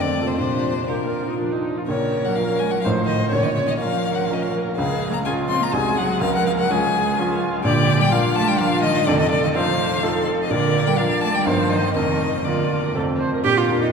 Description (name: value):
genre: quick classical-period movement for piano quartet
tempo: 125 BPM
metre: 3/4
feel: rubato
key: Bb minor, Bb major from 7.6 s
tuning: A4 = 443 Hz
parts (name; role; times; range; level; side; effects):
- rich violin; melody; 0.0-12.9 s; Bb4 to C6; -23 LUFS; left 6 dB; none
- warm cello; second line; 0.0-13.9 s; Bb2 to G4; -24 LUFS; right 4 dB; none
- clear baby grand piano; accompaniment; 0.0-13.9 s; F1 to C5; -23 LUFS; equal; none
- rich viola; accompaniment; 0.0-13.9 s; A3 to D5; -25 LUFS; right 2 dB; none
room: wet cathedral reverb, RT60 4.9 s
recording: recorded in a church or concert hall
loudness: -18 LUFS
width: side -5 dB against mid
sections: 0.0-1.9 A section; 1.9-13.4 B section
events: none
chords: 0.4 Bb; 1.9 Bbm; 2.8 F7/A; 3.3 Bbm; 4.8 Db; 5.7 Ab7/C; 6.2 Db; 7.6 Bb; 9.1 F7; 10.5 Bb; 11.5 Eb/G; 12.0 Bb/F; 13.0 F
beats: | 0.38 0.89 1.38 | 1.88 2.36 2.85 | 3.33 3.81 4.30 | 4.78 5.26 5.73 | 6.21 6.69 7.17 | 7.64 8.12 8.59 | 9.07 9.55 10.02 | 10.50 10.98 11.46 | 11.96 12.46 12.95 | 13.45